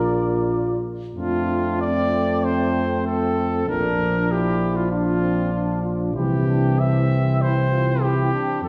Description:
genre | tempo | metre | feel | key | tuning
classical, brass quintet | 96 BPM | 4/4 | uneven beats, rubato | F major | A4 = 441 Hz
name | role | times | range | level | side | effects
mellow trumpet | melody | 0.0-8.7 s | F4 to E5 | -28 LUFS | equal | none
mellow flugelhorn | second line | 0.0-8.7 s | C4 to Bb4 | -32 LUFS | equal | none
mellow French horn | accompaniment | 0.0-8.7 s | E3 to F4 | -28 LUFS | equal | none
warm trombone | accompaniment | 0.0-8.7 s | A3 to F4 | -33 LUFS | equal | none
mellow tuba | bass | 0.0-8.7 s | Bb1 to F2 | -25 LUFS | equal | none
room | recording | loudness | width
wet recital hall reverb, RT60 1.8 s | heard from further back in the room | -21 LUFS | mono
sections
0.0-1.2 A section; 1.2-8.7 B section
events
none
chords
0.0 Bb; 1.2 F; 3.7 Bb; 6.1 C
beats
0.49 | 1.15 1.81 2.44 3.06 | 3.68 4.30 4.91 5.53 | 6.15 6.79 7.41 8.02 | 8.62

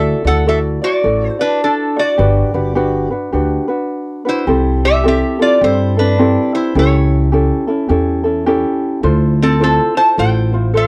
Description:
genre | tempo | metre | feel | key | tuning
Hawaiian | 105 BPM | 4/4 | swing 62% on 8ths | G major, C major from 4.5 s | A4 = 440 Hz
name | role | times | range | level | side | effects
lap resonator guitar | melody | 0.0-10.9 s | C4 to A5 | -18 LUFS | equal | slapback echo
ukulele | accompaniment | 0.0-10.9 s | C4 to D5 | -19 LUFS | equal | none
upright bass | bass | 0.0-10.9 s | G1 to G2 | -18 LUFS | equal | none
room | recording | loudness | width
little or no reverb | dry, close 1970s-style studio recording | -15 LUFS | mono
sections
0.0-4.5 A section; 4.5-10.9 B section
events
none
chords
0.0 Dadd9; 2.2 Gmaj7; 4.5 C6; 6.8 A7/C#; 9.0 Dm9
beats
0.47 1.04 1.61 | 2.18 2.76 3.33 3.90 | 4.47 5.04 5.61 6.18 | 6.75 7.32 7.89 8.46 | 9.03 9.60 10.17 10.74

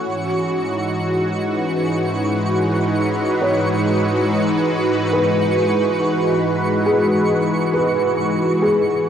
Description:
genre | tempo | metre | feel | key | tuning
ambient | 52 BPM | 4/4 | straight | unclear | A4 = 441 Hz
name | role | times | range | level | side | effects
warm analog pad | sustained chords | 0.0-9.1 s | G#2 to C#5 | -17 LUFS | equal | chorus, cassette tape, shimmer reverb
felt-muted upright piano | arpeggios | 0.0-9.1 s | G#4 to C#5 | -21 LUFS | equal | cassette tape, analog delay, shimmer reverb
twinkling granular texture | texture | 0.0-9.1 s | C#6 | -29 LUFS | right 2 dB | built-in reverb, cassette tape, shimmer reverb
room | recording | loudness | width
wet lush hall reverb, RT60 2.6 s | home recording on cassette | -16 LUFS | side -8 dB against mid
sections
0.0-9.1 A section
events
fade-in on synth texture 0.0-9.1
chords
0.1 Emaj9/G#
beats
| 0.05 1.19 2.33 3.46 | 4.60 5.75 6.90 8.07

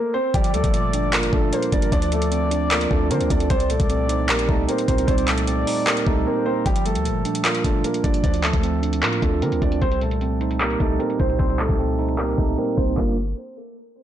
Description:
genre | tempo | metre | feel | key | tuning
hip hop, trap | 152 BPM | 4/4 | half-time | G minor | A4 = 440 Hz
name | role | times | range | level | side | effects
dark grand piano | melody | 0.0-13.2 s | G3 to D5 | -25 LUFS | equal | digital delay
gliding portamento lead | second line | 0.3-6.6 s | A4 to D5 | -28 LUFS | left 4 dB | chorus, digital delay
mellow tine electric piano | accompaniment | 0.3-13.2 s | Bb2 to G4 | -25 LUFS | right 6 dB | none
warm 808-style bass | bass | 0.3-13.3 s | G1 to D3 | -24 LUFS | left 1 dB | none
trap drum kit | drums | 0.3-13.1 s | handclaps, hi-hat, kick drum | -22 LUFS | left 1 dB | vintage 12-bit sampler grit
room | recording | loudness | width
light reverb, digital ambience | blown-out, overdriven recording, overdrive, low-pass filter | -18 LUFS | side -11 dB against mid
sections
0.0-6.7 A section; 6.7-13.0 B section; 13.0-14.0 C section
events
drums muted 6.3-6.7; filter sweep 6.7-13.0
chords
0.3 Gm7; 1.9 Dm7; 3.5 Cm7; 6.7 Gm7; 8.2 Dm7; 9.8 Cm7; 13.0 Gm7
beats
| 0.34 0.74 1.13 1.53 | 1.92 2.32 2.71 3.11 | 3.50 3.90 4.29 4.68 | 5.08 5.47 5.87 6.26 | 6.66 7.05 7.45 7.84 | 8.24 8.63 9.03 9.42 | 9.82 10.21 10.61 11.00 | 11.39 11.79 12.19 12.58 | 12.97

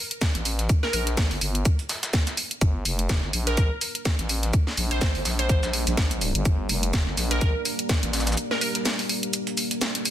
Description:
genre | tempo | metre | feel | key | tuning
bass house | 125 BPM | 4/4 | swing 57% on 16ths | G minor | A4 = 441 Hz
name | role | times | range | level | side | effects
garage drum kit | drums | 0.1-10.1 s | hi-hat, snare drum | -27 LUFS | equal | studio reverb
dusty soul sampler-style drum kit | drums | 0.2-10.1 s | hi-hat, shaker, snare drum | -34 LUFS | equal | overdrive, sidechain pumping on perc, high-pass filter on perc, studio reverb, high-pass filter on snare, sidechain pumping on hats, high-pass filter on hats
electronic kick drum | drums | 0.2-8.0 s | none | -22 LUFS | equal | studio reverb
growling FM bass | bass | 0.4-8.4 s | F1 to Bb1 | -27 LUFS | equal | overdrive, sidechain pumping
glassy wavetable pluck | melody | 0.8-8.7 s | Bb4 to C5 | -31 LUFS | right 1 dB | chorus, dub echo
deep dark ambient pad | sustained chords | 3.9-10.1 s | G3 to Bb4 | -32 LUFS | equal | chorus, built-in reverb, sidechain pumping
room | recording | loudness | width
light reverb | dense, heavily limited modern master | -22 LUFS | side -11 dB against mid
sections
0.0-10.1 A section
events
kick drops out 8.4-10.1; drum fill 9.8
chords
0.0 Gm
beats
0.21 | 0.69 1.18 1.66 2.13 | 2.62 3.10 3.58 4.05 | 4.54 5.01 5.50 5.97 | 6.46 6.93 7.42 7.89 | 8.38 8.86 9.34 9.81

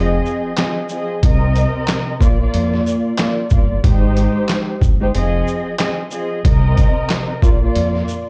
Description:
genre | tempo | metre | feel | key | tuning
hip hop, boom-bap hip-hop | 92 BPM | 4/4 | swing 60% on 16ths | unclear | A4 = 436 Hz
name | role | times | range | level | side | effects
dark studio string section | accompaniment | 0.0-8.3 s | Bb2 to Eb5 | -22 LUFS | equal | cassette tape, high-pass filter, low-pass filter
deep dub fingered electric bass | bass | 0.0-8.0 s | F1 to F2 | -20 LUFS | equal | none
trip hop sampler-style drum kit | drums | 0.3-8.3 s | handclaps, hi-hat, kick drum, shaker, snare drum | -19 LUFS | equal | none
room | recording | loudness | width
little or no reverb | played on a big sound system in a bare room, large studio reverb, nothing above 10.5 kHz | -17 LUFS | mono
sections
0.0-8.3 A section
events
none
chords
0.0 Fm7; 1.2 Cm7; 2.2 Bb; 3.8 Abmaj7; 5.1 Fm7; 6.4 Cm7; 7.4 Bb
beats
0.58 | 1.23 1.88 2.53 3.19 | 3.84 4.49 5.14 5.79 | 6.45 7.10 7.75

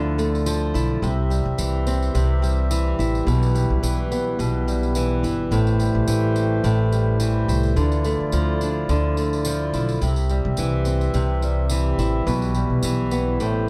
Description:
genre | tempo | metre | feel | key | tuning
acoustic pop | 107 BPM | 4/4 | swing 55% on 16ths | unclear | A4 = 440 Hz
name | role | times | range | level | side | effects
nylon-string guitar | accompaniment | 0.0-13.7 s | A2 to E4 | -25 LUFS | equal | none
hand-pumped harmonium | sustained chords | 0.0-13.7 s | A3 to E5 | -32 LUFS | equal | none
upright bass | bass | 0.0-13.7 s | G1 to D2 | -25 LUFS | equal | none
tambourine | percussion | 0.2-13.5 s | none | -39 LUFS | equal | none
room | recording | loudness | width
light reverb | dark, warm production | -21 LUFS | mono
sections
0.0-13.7 A section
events
none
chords
0.0 Dmadd9; 1.0 C; 3.3 Em/B; 5.5 Am7; 7.8 Dmadd9; 10.0 C; 12.3 Em/B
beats
0.47 | 1.03 1.59 2.15 2.71 | 3.27 3.84 4.40 4.96 | 5.52 6.08 6.64 7.21 | 7.77 8.33 8.89 9.46 | 10.02 10.58 11.14 11.71 | 12.27 12.83 13.40

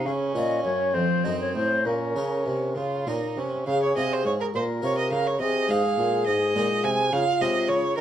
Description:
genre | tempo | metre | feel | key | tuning
classical, baroque-style sonata movement with continuo | 68 BPM (dotted quarters) | 6/8 | uneven beats | Bb minor, Db major from 3.7 s | A4 = 440 Hz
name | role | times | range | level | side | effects
mellow concert flute | melody | 0.0-8.0 s | F4 to F5 | -26 LUFS | left 4 dB | none
clear violin | second line | 0.0-8.0 s | C4 to Ab5 | -27 LUFS | right 5 dB | none
harpsichord | accompaniment | 0.0-8.0 s | F2 to Bb4 | -30 LUFS | left 1 dB | none
mellow bassoon | bass | 0.0-8.0 s | F2 to Eb3 | -29 LUFS | right 1 dB | none
room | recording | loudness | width
light reverb | dark, warm production, lossy compression artefacts | -22 LUFS | side -10 dB against mid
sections
0.0-3.7 A section; 3.7-8.0 A section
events
none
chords
0.1 Bbm; 0.9 F7; 1.9 Bbm; 3.7 Db; 4.5 Bbm; 5.4 Ab; 7.1 Db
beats
| 0.06 0.94 | 1.85 2.76 | 3.67 4.54 | 5.40 6.26 | 7.12 7.97

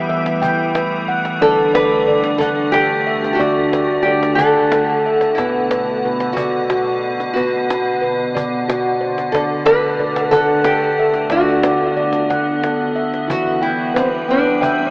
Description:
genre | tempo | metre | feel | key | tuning
world meditative, meditative tuned percussion | 61 BPM (dotted quarters) | 6/8 | straight | unclear | A4 = 440 Hz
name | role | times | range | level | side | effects
nylon-string guitar | melody | 0.0-14.9 s | C4 to B4 | -17 LUFS | equal | diffuse ambient delay
icy glass pad | sustained chords | 0.0-14.9 s | B2 to F#5 | -24 LUFS | equal | chorus, built-in reverb
handpan | arpeggios | 0.0-14.9 s | B2 to G5 | -18 LUFS | equal | none
cajon | percussion | 0.1-14.8 s | none | -28 LUFS | equal | none
room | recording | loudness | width
wet cathedral reverb, RT60 6.3 s | in a vast, echoing space, AM radio sound | -14 LUFS | side -28 dB against mid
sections
0.0-13.3 A section; 13.3-14.9 B section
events
none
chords
0.0 Em; 1.4 D; 5.4 Bm; 9.3 D; 13.3 Em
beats
0.43 | 1.42 2.42 | 3.41 4.40 | 5.39 6.38 | 7.37 8.36 | 9.35 10.34 | 11.33 12.31 | 13.30 14.29

